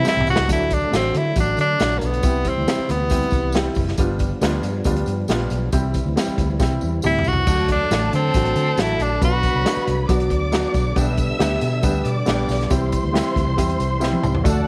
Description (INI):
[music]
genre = uptempo 1960s-style soul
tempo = 138 BPM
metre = 4/4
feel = straight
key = unclear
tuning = A4 = 440 Hz
[part]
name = bright tenor saxophone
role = melody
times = 0.0-3.8, 7.1-10.1 s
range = Bb3 to F#4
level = -24 LUFS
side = equal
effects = none
[part]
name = warm studio string section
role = second line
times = 0.0-0.5, 7.5-14.7 s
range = E4 to E6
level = -30 LUFS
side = equal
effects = none
[part]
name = dark grand piano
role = accompaniment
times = 0.0-14.7 s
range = F#3 to A4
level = -27 LUFS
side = equal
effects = none
[part]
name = percussive tonewheel organ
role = sustained chords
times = 0.0-14.7 s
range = C3 to E4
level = -32 LUFS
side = equal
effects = none
[part]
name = vintage muted fingered electric bass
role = bass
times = 0.0-14.6 s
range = F#1 to D3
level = -26 LUFS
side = equal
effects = none
[part]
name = tambourine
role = percussion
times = 0.0-14.6 s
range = none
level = -41 LUFS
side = equal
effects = none
[part]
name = swinging big-band drum kit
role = drums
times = 0.1-14.6 s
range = crash cymbal, hi-hat, kick drum, snare drum, toms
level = -26 LUFS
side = equal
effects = none
[sound]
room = light reverb, studio reverb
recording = vinyl crackle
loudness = -20 LUFS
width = mono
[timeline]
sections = 0.5-14.4 A section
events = drum fill 0.1-0.5, 6.6-7.5, 14.0-14.4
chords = 0.5 D; 2.2 C; 4.0 G7; 5.7 C; 7.5 D; 9.2 Bm; 11.0 G/B; 12.7 C